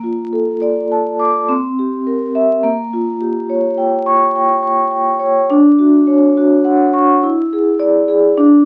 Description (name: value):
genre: classical, contemporary piece for solo vibraphone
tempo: 105 BPM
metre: 5/4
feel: straight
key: unclear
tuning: A4 = 437 Hz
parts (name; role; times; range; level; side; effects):
- vibraphone with soft mallets; solo; 0.0-8.7 s; Bb3 to D6; -14 LUFS; equal; none
room: light reverb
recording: very old 78 rpm record, vinyl crackle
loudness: -14 LUFS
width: mono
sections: 0.0-8.7 A section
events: none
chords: 0.0 Bbmaj7; 1.5 C7; 2.6 Bbm6; 5.5 Dmaj7; 7.2 E7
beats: 0.34 0.92 1.50 2.07 | 2.65 3.22 3.79 4.37 4.94 | 5.52 6.09 6.66 7.24 7.81 | 8.38